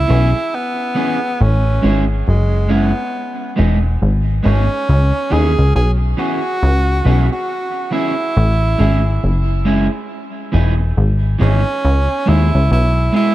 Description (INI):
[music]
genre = roots reggae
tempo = 69 BPM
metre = 4/4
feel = swing 61% on 16ths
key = C# minor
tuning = A4 = 439 Hz
[part]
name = breathy tenor saxophone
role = melody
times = 0.0-13.3 s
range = G#3 to G#4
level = -20 LUFS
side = right 1 dB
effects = tape echo
[part]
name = plucky analog bass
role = bass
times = 0.0-13.1 s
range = E1 to D#2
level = -13 LUFS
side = equal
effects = none
[part]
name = electric guitar at the edge of break-up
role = accompaniment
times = 0.1-13.3 s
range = E3 to G#4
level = -21 LUFS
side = right 2 dB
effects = spring reverb, tape echo
[sound]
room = studio ambience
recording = dry, close 1970s-style studio recording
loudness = -13 LUFS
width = side -15 dB against mid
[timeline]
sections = 0.0-13.3 A section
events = none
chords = 0.0 C#m7; 1.4 Amaj7; 3.1 Emaj7; 4.9 C#m7; 8.4 Amaj7; 10.1 Emaj7; 11.8 C#m7